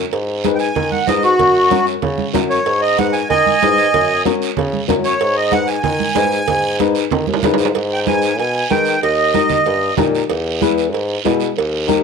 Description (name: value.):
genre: latin, cumbia.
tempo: 189 BPM.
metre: 4/4.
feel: straight.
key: G# minor, G# harmonic minor from 7.8 s.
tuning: A4 = 436 Hz.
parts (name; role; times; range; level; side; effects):
dark upright piano; accompaniment; 0.0-12.0 s; C#4 to B4; -20 LUFS; left 13 dB; none.
mellow bassoon; bass; 0.0-12.0 s; D#2 to D#3; -21 LUFS; equal; none.
cowbell and timbales; percussion; 0.1-11.7 s; none; -25 LUFS; right 11 dB; none.
guiro; percussion; 0.1-12.0 s; none; -27 LUFS; right 14 dB; none.
congas; percussion; 0.4-12.0 s; none; -22 LUFS; right 9 dB; none.
accordion; melody; 0.6-9.9 s; F#4 to G#5; -16 LUFS; right 1 dB; light tremolo tuning.
room: light reverb, small room ambience.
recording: 1960s-style stereo with parts hard left and right.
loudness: -14 LUFS.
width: side -5 dB against mid.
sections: 0.0-7.8 A section; 7.8-12.0 B section.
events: accordion solo 0.0-7.8; drum fill 7.1-7.8.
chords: 0.1 G#m; 1.4 F#; 2.7 G#m; 3.9 F#; 5.2 G#m; 9.0 D#; 10.3 E.